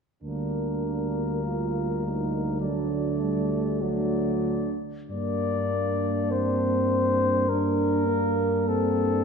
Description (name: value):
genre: classical, hymn-like piece for brass band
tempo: 50 BPM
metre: 4/4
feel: rubato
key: G minor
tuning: A4 = 437 Hz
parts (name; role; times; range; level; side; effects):
- mellow flugelhorn; melody; 0.2-9.2 s; A4 to D5; -29 LUFS; left 4 dB; none
- mellow French horn section; second line; 0.2-9.2 s; D4 to F4; -31 LUFS; right 8 dB; none
- dark euphonium; accompaniment; 0.2-9.2 s; F#3 to Bb3; -31 LUFS; right 3 dB; none
- warm euphonium; accompaniment; 0.2-9.2 s; F#3 to D4; -31 LUFS; left 2 dB; none
- mellow tuba; bass; 0.2-9.2 s; D2 to G2; -30 LUFS; left 1 dB; none
room: wet concert hall reverb, RT60 2.0 s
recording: minimal, uncompressed stereo recording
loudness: -24 LUFS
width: side -6 dB against mid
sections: 0.2-5.1 A section; 5.1-9.2 B section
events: none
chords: 0.2 Gm/D; 2.6 D; 5.1 Gm